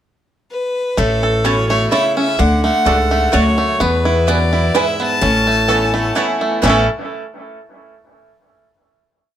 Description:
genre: bluegrass.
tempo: 128 BPM.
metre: 3/4.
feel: swing 53% on 8ths.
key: A major.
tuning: A4 = 442 Hz.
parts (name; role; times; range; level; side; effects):
clear fiddle; melody; 0.5-6.2 s; A4 to A5; -18 LUFS; left 1 dB; plate reverb, analog delay.
picked swing-style acoustic guitar; accompaniment; 1.0-6.8 s; E2 to E4; -21 LUFS; left 2 dB; none.
bluegrass banjo; arpeggios; 1.0-6.9 s; A3 to A4; -18 LUFS; right 2 dB; analog delay.
upright bass; bass; 1.0-6.9 s; A1 to E2; -18 LUFS; equal; none.
mandolin; stabs; 1.4-6.8 s; A3 to A5; -22 LUFS; right 6 dB; analog delay.
room: moderate small room ambience, RT60 0.5 s.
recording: none.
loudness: -13 LUFS.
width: side -10 dB against mid.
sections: 0.0-1.0 pickup bar; 1.0-6.6 A section; 6.6-8.0 final chord.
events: none.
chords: 0.0 N.C.; 1.0 A; 2.4 D; 3.8 E; 5.2 Aadd9.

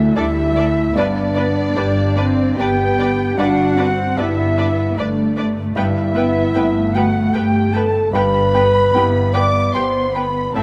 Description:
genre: cinematic, emotional film score for orchestra.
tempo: 75 BPM.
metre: 3/4.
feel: rubato.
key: unclear.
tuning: A4 = 439 Hz.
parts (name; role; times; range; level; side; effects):
concert flute; second line; 0.0-10.6 s; D5 to D6; -26 LUFS; equal; none.
muted symphonic violin section; second line; 0.0-10.6 s; D5 to D6; -30 LUFS; equal; none.
felt-muted upright piano; accompaniment; 0.0-10.6 s; D2 to B4; -27 LUFS; equal; none.
mellow French horn section; sustained chords; 0.0-10.6 s; D4 to D5; -22 LUFS; equal; none.
muted symphonic cello section; bass; 0.0-10.6 s; G3 to D4; -23 LUFS; equal; none.
muted symphonic double bass section; bass; 0.0-10.6 s; G1 to D2; -24 LUFS; equal; none.
muted symphonic violin section; melody; 0.2-10.6 s; D5 to G5; -32 LUFS; equal; none.
muted symphonic viola section; accompaniment; 0.2-10.6 s; B3 to B4; -30 LUFS; equal; none.
room: light reverb.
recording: close, detailed microphones.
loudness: -17 LUFS.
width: mono.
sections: 0.0-10.6 A section.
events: none.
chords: 0.0 Dsus2; 1.0 G.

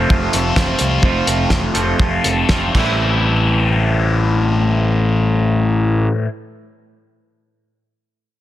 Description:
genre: indie rock.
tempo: 113-132 BPM.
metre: 4/4.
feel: straight.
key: A minor.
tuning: A4 = 440 Hz.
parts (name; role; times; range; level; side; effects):
cranked stack guitar; riff; 0.0-6.3 s; A2 to A4; -18 LUFS; left 5 dB; overdrive, phaser.
twangy electric guitar; riff; 0.0-6.3 s; F2 to F4; -22 LUFS; right 7 dB; wide subtle chorus, slapback echo.
fuzz picked electric bass; bass; 0.0-6.1 s; F1 to C2; -18 LUFS; equal; overdrive.
cloth-damped thuddy drum kit; drums; 0.1-2.9 s; crash cymbal, hi-hat, kick drum, snare drum; -19 LUFS; equal; none.
room: light reverb, small room reverb.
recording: dense, heavily limited modern master.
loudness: -14 LUFS.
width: side -13 dB against mid.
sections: 0.0-3.0 A section; 3.0-7.3 B section.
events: slowing down 0.0-3.0.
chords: 0.0 F; 2.8 Am7.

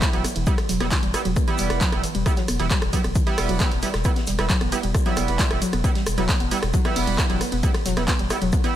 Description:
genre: driving peak-time techno.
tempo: 134 BPM.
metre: 4/4.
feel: straight.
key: E minor.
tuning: A4 = 437 Hz.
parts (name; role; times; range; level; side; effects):
sync-sweep polysynth; stabs; 0.0-8.8 s; G3 to E4; -28 LUFS; right 5 dB; chorus, cassette tape, sidechain pumping, dub echo.
electronic kick drum; drums; 0.0-8.6 s; none; -22 LUFS; equal; none.
punchy analog drum machine; drums; 0.0-8.7 s; handclaps, hi-hat, ride cymbal, rim click; -27 LUFS; equal; none.
vintage brush drum kit; drums; 0.0-8.7 s; hi-hat, shaker, snare drum; -36 LUFS; left 2 dB; sidechain pumping on hats, high-pass filter on hats, high-pass filter on snare, sidechain pumping on perc, high-pass filter on perc, high-pass filter on room.
warbly dusty pluck; riff; 0.1-8.7 s; E3 to B3; -27 LUFS; left 1 dB; chorus, overdrive, sidechain pumping, digital delay.
saturated sub bass; bass; 0.1-8.5 s; E1; -28 LUFS; equal; overdrive, sidechain pumping, low-pass filter.
room: small room ambience.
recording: none.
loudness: -19 LUFS.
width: side -12 dB against mid.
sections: 0.0-8.8 A section.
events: none.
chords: 0.0 Em.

